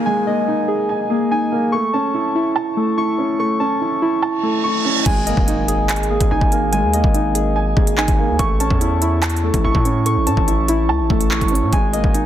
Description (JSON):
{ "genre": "hip hop, drill", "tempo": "144 BPM", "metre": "4/4", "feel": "half-time", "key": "unclear", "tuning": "A4 = 439 Hz", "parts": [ { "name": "dark concert grand piano", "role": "accompaniment", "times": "0.0-12.3 s", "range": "G#3 to A5", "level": "-22 LUFS", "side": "right 4 dB", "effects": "low-pass filter" }, { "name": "muted felt-like synth keys", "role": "arpeggios", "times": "0.0-12.3 s", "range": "A3 to C#6", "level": "-19 LUFS", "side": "left 2 dB", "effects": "chorus, low-pass filter, tape echo" }, { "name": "downlifter, reverse cymbal and impact", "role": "sound effects", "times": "0.0-6.7 s", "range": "none", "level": "-26 LUFS", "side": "right 3 dB", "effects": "none" }, { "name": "distorted 808-style bass", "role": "bass", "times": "5.1-12.3 s", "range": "G#1 to A2", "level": "-20 LUFS", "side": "equal", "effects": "distortion" }, { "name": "drill drum kit", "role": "drums", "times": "5.1-12.2 s", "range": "crash cymbal, handclaps, hi-hat, kick drum", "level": "-19 LUFS", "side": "equal", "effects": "none" } ], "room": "little or no reverb", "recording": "dense, heavily limited modern master", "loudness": "-15 LUFS", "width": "side -11 dB against mid", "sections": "0.0-5.1 A section; 5.1-12.3 B section", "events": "reverse cymbal 4.4-5.1; impact 5.1-6.7", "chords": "0.0 G#sus2; 1.7 A; 5.1 G#sus2; 8.4 A; 11.7 G#sus2", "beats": "| 0.06 0.48 0.89 1.31 | 1.73 2.14 2.56 2.98 | 3.39 3.81 4.23 4.64 | 5.06 5.48 5.89 6.31 | 6.73 7.14 7.56 7.98 | 8.39 8.81 9.23 9.64 | 10.06 10.48 10.89 11.31 | 11.73 12.14" }